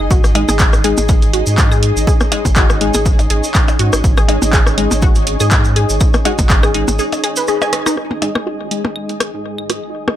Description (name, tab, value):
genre	minimal techno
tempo	122 BPM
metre	4/4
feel	swing 55% on 16ths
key	unclear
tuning	A4 = 439 Hz
part	saturated sub bass	bass	0.0-9.9 s	G#1 to G#2	-18 LUFS	equal	sidechain pumping, high-pass filter
part	granular cloud pad	texture	0.0-10.2 s	D#4 to D#5	-22 LUFS	equal	built-in reverb, sidechain pumping
part	resonant blip pluck	riff	0.1-10.1 s	D#4 to G#5	-22 LUFS	equal	chorus, sidechain pumping, digital delay
part	electronic kick drum	drums	0.1-6.6 s	none	-13 LUFS	equal	none
part	cabasa	percussion	0.1-8.0 s	none	-24 LUFS	right 3 dB	none
part	flickering grainy texture	texture	0.8-10.2 s	G#3 to C#5	-28 LUFS	right 2 dB	built-in reverb, sidechain pumping
part	electronic rim click, percussion blips and claves	percussion	0.2-10.2 s	none	-20 LUFS	left 2 dB	ping-pong delay
part	wavetable chord stab	stabs	0.4-8.8 s	G#3 to G#4	-22 LUFS	left 4 dB	ping-pong delay
part	punchy analog drum machine	drums	0.4-9.8 s	handclaps, hi-hat, rim click	-19 LUFS	right 1 dB	none
room	light reverb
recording	none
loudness	-12 LUFS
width	side -12 dB against mid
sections	0.0-8.0 A section; 8.0-10.2 B section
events	break 7.0-8.0; drum fill 7.5-8.0; filter sweep on synth arpeggio sound 8.0-10.2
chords	0.0 G#5